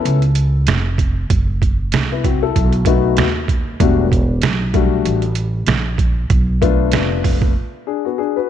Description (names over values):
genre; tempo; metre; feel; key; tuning
hip hop, jazz-hop; 96 BPM; 4/4; swing 59% on 16ths; unclear; A4 = 439 Hz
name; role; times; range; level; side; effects
dark upright piano; accompaniment; 0.0-8.5 s; G3 to B4; -19 LUFS; left 12 dB; none
upright bass; bass; 0.0-7.5 s; E1 to D#2; -18 LUFS; right 1 dB; none
trip hop sampler-style drum kit; drums; 0.1-7.5 s; hi-hat, kick drum, snare drum; -17 LUFS; right 3 dB; none
room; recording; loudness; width
light reverb, small room reverb; 1960s-style stereo; -14 LUFS; side -10 dB against mid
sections
0.0-8.5 A section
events
break 7.6-8.5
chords
0.0 Aadd9; 1.3 F#7(b5, no3); 2.6 B7; 3.8 Em11; 6.3 Bm7b5; 7.6 N.C.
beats
0.06 0.68 | 1.30 1.93 2.56 3.18 | 3.81 4.43 5.05 5.68 | 6.30 6.93 7.55 8.18